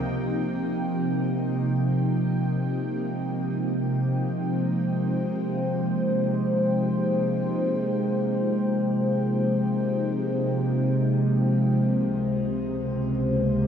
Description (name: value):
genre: ambient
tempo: free time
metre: none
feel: none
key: Ab major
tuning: A4 = 441 Hz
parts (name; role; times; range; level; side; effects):
- evolving wavetable pad; sustained chords; 0.0-13.7 s; Db2 to G5; -24 LUFS; right 1 dB; phaser, built-in reverb
- analog drone; drone; 3.2-13.7 s; Ab3 to C5; -27 LUFS; left 1 dB; chorus
room: wet plate reverb, RT60 2.7 s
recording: none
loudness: -23 LUFS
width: side -8 dB against mid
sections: 0.0-13.7 A section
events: filter sweep on ambient pad 0.0-13.7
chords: 0.0 Abmaj7; 11.8 Dbmaj7(no3)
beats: free time